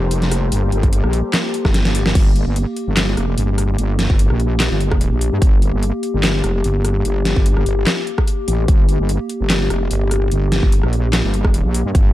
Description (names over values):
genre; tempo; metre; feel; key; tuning
heavy wobble dubstep; 147 BPM; 4/4; swing 54% on 16ths, half-time; G minor; A4 = 440 Hz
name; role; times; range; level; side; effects
supersaw chords; sustained chords; 0.0-2.1 s; G3 to C5; -30 LUFS; equal; sidechain pumping, low-pass filter
wobble bass; bass; 0.0-12.1 s; F1 to G2; -18 LUFS; equal; chorus, overdrive
warbly tape-like pad; texture; 0.0-12.1 s; Bb3 to G4; -24 LUFS; left 1 dB; chorus, built-in reverb, sidechain pumping
dubstep drum kit; drums; 0.1-12.0 s; crash cymbal, handclaps, hi-hat, rim click, snare drum; -21 LUFS; equal; overdrive
electronic kick drum; drums; 0.8-12.0 s; none; -15 LUFS; equal; overdrive
room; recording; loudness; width
digital ambience; dark, warm production; -14 LUFS; side -15 dB against mid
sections
0.0-2.2 A section; 2.2-12.1 A section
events
drop 0.0-2.2, 2.2-12.1; drum fill 1.7-2.2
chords
0.0 Gmadd9; 2.2 Gm